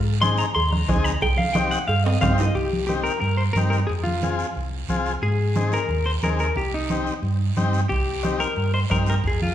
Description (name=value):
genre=latin, cumbia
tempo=179 BPM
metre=4/4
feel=straight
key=C minor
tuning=A4 = 439 Hz
part: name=hollow-body short-scale fingered electric bass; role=bass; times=0.0-9.5 s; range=C2 to Ab2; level=-23 LUFS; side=right 1 dB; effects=none
part: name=clean electric guitar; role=melody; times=0.2-9.5 s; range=Eb4 to C6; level=-25 LUFS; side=left 2 dB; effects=spring reverb
part: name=combo organ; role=accompaniment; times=0.2-9.1 s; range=C4 to Ab4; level=-29 LUFS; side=left 3 dB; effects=none
part: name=bombo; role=percussion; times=0.2-2.4, 7.9-9.4 s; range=none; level=-28 LUFS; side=right 1 dB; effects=none
part: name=congas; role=percussion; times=0.2-9.5 s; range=none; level=-29 LUFS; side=right 1 dB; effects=none
part: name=guiro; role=percussion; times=0.2-9.5 s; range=none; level=-38 LUFS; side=right 6 dB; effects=none
part: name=cowbell and timbales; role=percussion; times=0.6-2.5 s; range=none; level=-30 LUFS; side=right 3 dB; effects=none
room=moderate large studio reverb, RT60 1.2 s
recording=band playing live in one room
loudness=-20 LUFS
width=side -11 dB against mid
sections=0.0-2.6 A section; 2.6-9.5 B section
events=clean electric guitar solo 0.0-2.6; drum fill 2.1-2.6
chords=0.0 Ab; 1.2 Cm; 3.9 Fm; 5.2 Ab; 6.6 Cm